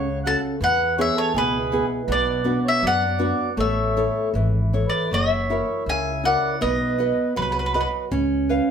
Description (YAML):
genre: fado-style ballad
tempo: 80 BPM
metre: 2/4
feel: rubato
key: unclear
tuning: A4 = 439 Hz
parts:
  - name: mandolin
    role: melody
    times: 0.0-7.9 s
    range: B4 to A5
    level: -23 LUFS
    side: left 2 dB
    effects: none
  - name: mellow accordion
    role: second line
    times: 0.0-7.9 s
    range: F#4 to F#5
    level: -27 LUFS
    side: right 4 dB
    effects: none
  - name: nylon-string guitar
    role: accompaniment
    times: 0.0-8.7 s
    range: B2 to E#5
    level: -24 LUFS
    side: equal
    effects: none
  - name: upright bass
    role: bass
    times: 0.0-8.6 s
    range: F#1 to F#2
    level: -27 LUFS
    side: equal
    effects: none
room: moderate studio reverb, RT60 0.8 s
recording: band playing live in one room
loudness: -19 LUFS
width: side -7 dB against mid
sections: 0.0-8.7 A section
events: none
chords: 0.0 F#m; 0.6 E; 2.1 Bm; 3.6 A; 5.1 F#7; 6.6 B; 8.1 C#7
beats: | 0.60 1.33 | 2.07 2.82 | 3.57 4.33 | 5.10 5.87 | 6.61 7.36 | 8.11